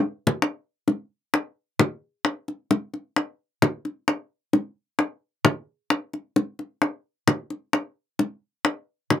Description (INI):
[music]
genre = latin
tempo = 131 BPM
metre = 4/4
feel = straight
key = none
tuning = none
[part]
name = bongos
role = percussion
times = 0.3-9.2 s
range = none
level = -20 LUFS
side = left 2 dB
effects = none
[sound]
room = wet booth ambience, RT60 0.2 s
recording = none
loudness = -24 LUFS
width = side -10 dB against mid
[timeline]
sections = 0.4-9.2 A section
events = drum fill 0.0-0.4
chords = none